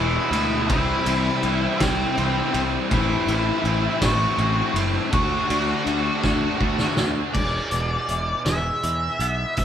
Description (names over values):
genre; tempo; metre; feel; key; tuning
quiet-loud alternative rock; 54 BPM (dotted quarters); 6/8; straight; unclear; A4 = 439 Hz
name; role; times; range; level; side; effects
octave-fuzz lead guitar; melody; 0.0-9.6 s; C4 to F#5; -25 LUFS; left 1 dB; distortion
thick fuzz guitar; riff; 0.0-7.3 s; A2 to F#4; -28 LUFS; left 7 dB; distortion
thick fuzz guitar; riff; 0.0-7.3 s; E2 to D4; -30 LUFS; equal; none
tight distorted guitar; riff; 0.0-7.3 s; A2 to F#4; -29 LUFS; right 8 dB; distortion
modern bright picked electric bass; bass; 0.0-9.6 s; E1 to E2; -26 LUFS; equal; none
oversized low-tuned drum kit; drums; 0.3-9.6 s; crash cymbal, hi-hat, kick drum, ride cymbal, snare drum; -26 LUFS; equal; none
twangy electric guitar; arpeggios; 7.3-9.6 s; E2 to B3; -32 LUFS; right 5 dB; phaser
room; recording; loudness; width
light reverb; band playing live in one room; -20 LUFS; side -9 dB against mid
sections
0.0-7.3 A section; 7.3-9.6 B section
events
drum fill 6.2-7.3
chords
0.0 E; 0.7 C; 2.9 Am; 5.1 D; 7.3 E